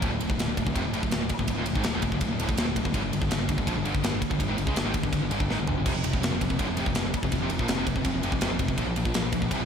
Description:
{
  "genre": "heavy metal",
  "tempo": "164 BPM",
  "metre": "4/4",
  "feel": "straight",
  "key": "D minor",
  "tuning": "A4 = 441 Hz",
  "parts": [
    { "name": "crunchy overdriven guitar", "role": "riff", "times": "0.0-9.7 s", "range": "D2 to G#3", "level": "-34 LUFS", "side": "equal", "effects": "none" },
    { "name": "high-gain distorted guitar", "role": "riff", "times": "0.0-9.7 s", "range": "D2 to G#3", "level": "-32 LUFS", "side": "right 9 dB", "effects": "distortion, slapback echo" },
    { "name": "scooped high-gain guitar", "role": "riff", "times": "0.0-9.7 s", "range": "D2 to G#3", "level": "-31 LUFS", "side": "left 8 dB", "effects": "distortion" },
    { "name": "growling picked electric bass", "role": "bass", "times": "0.0-9.7 s", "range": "D1 to C#2", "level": "-33 LUFS", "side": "equal", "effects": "overdrive" },
    { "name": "tight metal drum kit", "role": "drums", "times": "0.0-9.6 s", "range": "crash cymbal, kick drum, ride cymbal, snare drum, toms", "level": "-28 LUFS", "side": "equal", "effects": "none" }
  ],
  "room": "moderate lush hall reverb, RT60 1.6 s, small room ambience",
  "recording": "big arena sound",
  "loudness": "-24 LUFS",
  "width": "side -7 dB against mid",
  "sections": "0.0-9.7 A section",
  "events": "drum fill 5.5-5.9",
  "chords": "0.0 D5; 2.9 G5; 5.9 F5; 8.8 Bb5",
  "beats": "| 0.02 0.39 0.75 1.12 | 1.48 1.85 2.21 2.58 | 2.94 3.31 3.67 4.04 | 4.40 4.77 5.13 5.50 | 5.86 6.22 6.59 6.95 | 7.32 7.68 8.05 8.41 | 8.78 9.14 9.51"
}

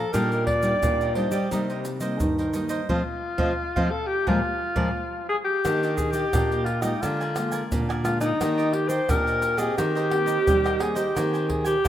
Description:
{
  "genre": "samba and choro",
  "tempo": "87 BPM",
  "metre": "4/4",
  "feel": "straight",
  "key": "Bb major, Eb major from 5.7 s",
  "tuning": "A4 = 440 Hz",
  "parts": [
    { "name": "breathy alto saxophone", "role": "melody", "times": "0.0-11.9 s", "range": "Eb4 to D5", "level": "-25 LUFS", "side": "left 1 dB", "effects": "none" },
    { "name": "cavaquinho", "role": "accompaniment", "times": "0.0-11.9 s", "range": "D4 to Bb5", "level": "-33 LUFS", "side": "right 4 dB", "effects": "none" },
    { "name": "nylon-string guitar", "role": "accompaniment", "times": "0.0-11.9 s", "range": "G2 to G4", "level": "-31 LUFS", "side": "left 2 dB", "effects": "none" },
    { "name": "nylon-string guitar", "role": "bass", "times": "0.0-11.9 s", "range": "Bb2 to G3", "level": "-28 LUFS", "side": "right 1 dB", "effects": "none" },
    { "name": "egg shaker, surdo, pandeiro and tamborim", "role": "percussion", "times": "0.1-11.9 s", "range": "none", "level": "-29 LUFS", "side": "right 1 dB", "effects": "none" }
  ],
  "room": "moderate lush hall reverb, RT60 2.4 s",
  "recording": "rough home demo mix",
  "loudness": "-22 LUFS",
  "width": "side -11 dB against mid",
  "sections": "0.0-5.7 A section; 5.7-11.9 B section",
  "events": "band accent 2.9-5.7",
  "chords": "0.1 Ebmaj7/Bb; 1.5 Cm7; 2.9 F7; 4.3 Bb7; 5.7 Ebmaj7; 7.0 Bb7/D; 8.4 Ebmaj7; 9.8 Cm7/Eb; 11.2 Abadd9/Eb",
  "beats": "| 0.14 0.83 1.52 2.21 | 2.89 3.58 4.27 4.96 | 5.65 6.34 7.03 7.72 | 8.41 9.10 9.79 10.48 | 11.17 11.86"
}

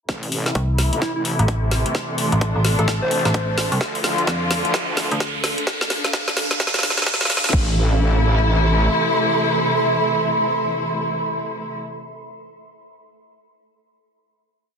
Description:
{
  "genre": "bass house",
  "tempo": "129 BPM",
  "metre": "4/4",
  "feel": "swing 61% on 16ths",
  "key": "A minor",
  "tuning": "A4 = 435 Hz",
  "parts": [
    { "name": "dark chamber string section", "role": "sustained chords", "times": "0.1-11.8 s", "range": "C3 to F4", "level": "-23 LUFS", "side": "left 2 dB", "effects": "sidechain pumping, low-pass filter" },
    { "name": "wobble bass", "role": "bass", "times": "0.1-8.9 s", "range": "A1 to D2", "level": "-21 LUFS", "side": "equal", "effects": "chorus, overdrive, sidechain pumping, high-pass filter" },
    { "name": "electronic kick drum", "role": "drums", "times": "0.1-7.6 s", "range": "none", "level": "-21 LUFS", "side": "equal", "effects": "high-pass filter on kick, small room ambience" },
    { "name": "garage drum kit", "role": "drums", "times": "0.1-7.6 s", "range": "crash cymbal, hi-hat, snare drum", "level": "-23 LUFS", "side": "equal", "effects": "small room ambience" },
    { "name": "riser", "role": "sound effects", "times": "1.4-7.5 s", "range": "none", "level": "-28 LUFS", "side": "right 2 dB", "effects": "none" },
    { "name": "granular cloud pad", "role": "texture", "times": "0.8-12.0 s", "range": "D4 to C6", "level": "-25 LUFS", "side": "right 2 dB", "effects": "built-in reverb, sidechain pumping" },
    { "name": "metallic FM bass", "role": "bass", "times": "0.6-5.6 s", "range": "A1 to F2", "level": "-20 LUFS", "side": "equal", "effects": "overdrive, sidechain pumping" },
    { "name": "soft struck synth lead", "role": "melody", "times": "1.0-3.7 s", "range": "E4 to C5", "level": "-27 LUFS", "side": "left 1 dB", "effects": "chorus, dub echo" }
  ],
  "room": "moderate digital room reverb, RT60 0.9 s",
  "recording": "dense, heavily limited modern master, high-pass filter",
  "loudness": "-17 LUFS",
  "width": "side -6 dB against mid",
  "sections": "0.1-7.5 build; 7.5-11.3 final chord",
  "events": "build-up 0.1-7.5; drum fill 0.1-7.5; filter sweep on string section 0.1-5.7; filter sweep 0.1-7.5; riser 1.4-7.5",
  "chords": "0.1 Am; 3.8 Dm; 7.5 Am",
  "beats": "| 0.09 0.55 1.02 1.48 | 1.95 2.41 2.88 3.34 | 3.81 4.27 4.74 5.20 | 5.67 6.13 6.60 7.07 | 7.53 8.00 8.46 8.93 | 9.39 9.86 10.32 10.79"
}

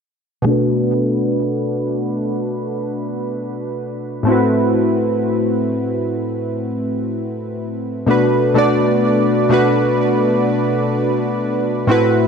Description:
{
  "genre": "R&B",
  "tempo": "63 BPM",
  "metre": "4/4",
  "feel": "straight",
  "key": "unclear",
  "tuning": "A4 = 440 Hz",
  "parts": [
    { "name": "warm analog keys", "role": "solo", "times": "0.4-12.3 s", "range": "A2 to D5", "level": "-15 LUFS", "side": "equal", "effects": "chorus, low-pass filter, digital delay" }
  ],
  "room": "light reverb",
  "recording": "dark, warm production",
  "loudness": "-16 LUFS",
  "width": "side -6 dB against mid",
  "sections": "0.5-8.1 A section; 8.1-12.3 B section",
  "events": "filter sweep on synth keys 0.5-8.1",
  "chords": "0.5 Bm7; 4.3 Am69; 8.1 Bm7",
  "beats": "| 0.46 1.41 2.36 3.31 | 4.27 5.22 6.17 7.12 | 8.07 9.03 9.98 10.93 | 11.88"
}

